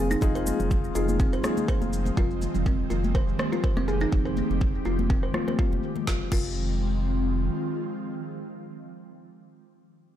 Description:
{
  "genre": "afro house",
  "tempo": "123 BPM",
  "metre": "4/4",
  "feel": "swing 55% on 16ths",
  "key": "F minor",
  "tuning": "A4 = 441 Hz",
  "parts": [
    { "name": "ethereal airy pad", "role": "sustained chords", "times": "0.0-9.4 s", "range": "Eb3 to G4", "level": "-31 LUFS", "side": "equal", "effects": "ensemble chorus, built-in reverb, phaser, sidechain pumping" },
    { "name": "kalimba", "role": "arpeggios", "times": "0.0-6.5 s", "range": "C4 to C5", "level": "-31 LUFS", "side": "equal", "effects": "sidechain pumping, low-pass filter, ping-pong delay" },
    { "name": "felt-muted upright piano", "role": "stabs", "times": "0.0-2.1 s", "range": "Eb4 to Ab4", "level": "-32 LUFS", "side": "left 4 dB", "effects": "sidechain pumping, ping-pong delay" },
    { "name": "warm sub bass", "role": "bass", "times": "0.0-7.5 s", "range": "F1", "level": "-29 LUFS", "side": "equal", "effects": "sidechain pumping" },
    { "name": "deep house drum kit", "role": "drums", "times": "0.1-6.5 s", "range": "crash cymbal, rim click, shaker, snare drum", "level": "-36 LUFS", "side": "equal", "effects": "low-pass filter on perc, studio reverb, low-pass filter on snare, low-pass filter on toms, low-pass filter on cymbals" },
    { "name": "congas", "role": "percussion", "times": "0.1-6.1 s", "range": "none", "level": "-33 LUFS", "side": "left 3 dB", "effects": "none" },
    { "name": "electronic kick drum", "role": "drums", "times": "0.2-6.5 s", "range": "none", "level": "-26 LUFS", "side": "equal", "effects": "studio reverb" }
  ],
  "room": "digital ambience",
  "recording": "none",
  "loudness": "-23 LUFS",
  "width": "side -11 dB against mid",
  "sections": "0.0-6.1 A section; 6.1-10.0 B section",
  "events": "filter sweep on drum 0.0-6.1",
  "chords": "0.0 Fm7"
}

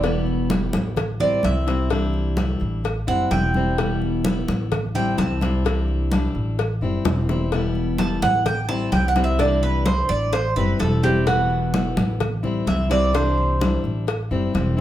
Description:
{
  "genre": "latin, Cuban son and guajira",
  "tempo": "128 BPM",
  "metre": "4/4",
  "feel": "straight",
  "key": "unclear",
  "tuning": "A4 = 439 Hz",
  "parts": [
    { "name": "fingerpicked steel-string acoustic guitar", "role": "accompaniment", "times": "0.0-14.8 s", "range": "B2 to E4", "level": "-25 LUFS", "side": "left 3 dB", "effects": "none" },
    { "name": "Cuban tres", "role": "arpeggios", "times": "0.0-13.8 s", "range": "F#4 to A5", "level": "-23 LUFS", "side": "right 3 dB", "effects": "none" },
    { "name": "upright bass", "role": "bass", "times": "0.0-14.8 s", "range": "E1 to C2", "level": "-23 LUFS", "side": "equal", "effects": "none" },
    { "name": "congas", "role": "percussion", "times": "0.0-14.8 s", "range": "none", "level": "-27 LUFS", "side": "equal", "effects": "none" },
    { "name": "cowbell and bongos", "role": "percussion", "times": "0.0-14.8 s", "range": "none", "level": "-29 LUFS", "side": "left 4 dB", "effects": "none" }
  ],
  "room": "wet large studio reverb, RT60 0.8 s",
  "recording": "heard from further back in the room",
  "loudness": "-19 LUFS",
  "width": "side -12 dB against mid",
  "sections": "0.0-14.8 A section",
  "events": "Cuban tres solo 0.0-14.8; drum fill 7.1-7.5",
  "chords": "0.0 Em; 1.0 Am7; 3.8 Em; 4.7 Am7; 5.6 Cadd9; 6.6 Am7; 7.5 Em; 8.5 Am7; 9.4 Cadd9; 10.3 Am7; 11.3 Em; 12.2 Am7"
}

